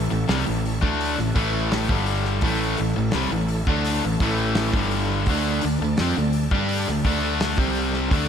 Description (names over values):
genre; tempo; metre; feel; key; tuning
classic rock; 84 BPM; 4/4; straight; A major; A4 = 441 Hz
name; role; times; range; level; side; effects
bright tonewheel organ; sustained chords; 0.0-8.3 s; E4 to Bb5; -34 LUFS; right 1 dB; overdrive, chorus vibrato, fast rotary speaker
cranked stack guitar; riff; 0.0-8.3 s; G2 to G4; -25 LUFS; left 9 dB; overdrive, slapback echo
overdriven semi-hollow guitar; riff; 0.0-8.3 s; G2 to G4; -26 LUFS; right 9 dB; none
fuzz fingered electric bass; bass; 0.0-8.3 s; G1 to G2; -27 LUFS; equal; overdrive
damped 70s drum kit; drums; 0.3-8.3 s; hi-hat, kick drum, snare drum; -27 LUFS; equal; none
room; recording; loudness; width
moderate lush hall reverb, RT60 2.0 s; big arena sound; -20 LUFS; side -8 dB against mid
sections
0.0-8.3 A section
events
none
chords
0.0 A; 5.3 D5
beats
0.29 1.01 1.72 | 2.43 3.14 3.85 4.56 | 5.27 5.98 6.69 7.41 | 8.12